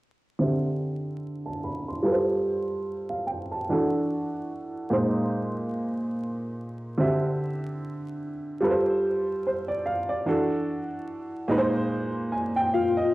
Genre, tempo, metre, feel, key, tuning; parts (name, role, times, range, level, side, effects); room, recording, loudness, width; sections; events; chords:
hip hop; 73 BPM; 4/4; swing 58% on 16ths; A4 = 440 Hz
warm upright piano; accompaniment; 0.4-13.1 s; Bb2 to C6; -25 LUFS; right 1 dB; cassette tape, low-pass filter
vibraphone with soft mallets; melody; 12.7-13.1 s; F4; -22 LUFS; left 4 dB; low-pass filter, cassette tape
wet spring reverb, RT60 1.3 s, studio ambience; home recording on cassette, vinyl crackle; -25 LUFS; side -18 dB against mid
0.4-13.1 A section
filter sweep on upright piano 0.4-13.1; upright piano fill 11.9-13.1
0.4 D9sus4; 2.0 G9sus4; 3.7 E9sus4; 4.9 Bb9sus4; 7.0 D9sus4; 8.6 G9sus4; 10.3 E9sus4; 11.5 Bb9sus4